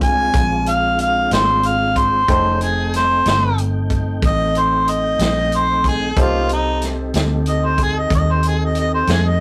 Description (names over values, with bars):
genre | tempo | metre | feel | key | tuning
slow blues | 62 BPM (dotted quarters) | 12/8 | straight | F mixolydian | A4 = 440 Hz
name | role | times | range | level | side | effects
warm harmonica | melody | 0.0-9.4 s | Eb4 to Ab5 | -20 LUFS | equal | overdrive
clear baby grand piano | accompaniment | 0.0-9.4 s | A3 to G5 | -31 LUFS | equal | none
tonewheel organ | sustained chords | 0.0-9.4 s | E3 to G5 | -27 LUFS | equal | slow rotary speaker, chorus vibrato
vintage muted fingered electric bass | bass | 0.0-9.4 s | F1 to F2 | -23 LUFS | equal | none
vintage drum kit | drums | 0.0-9.2 s | hi-hat, kick drum, snare drum | -24 LUFS | equal | none
room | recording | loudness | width
moderate small room reverb, RT60 0.5 s | rough rehearsal-room recording, tube saturation | -17 LUFS | mono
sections
0.0-9.4 A section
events
none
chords
0.0 Bb9; 2.3 F9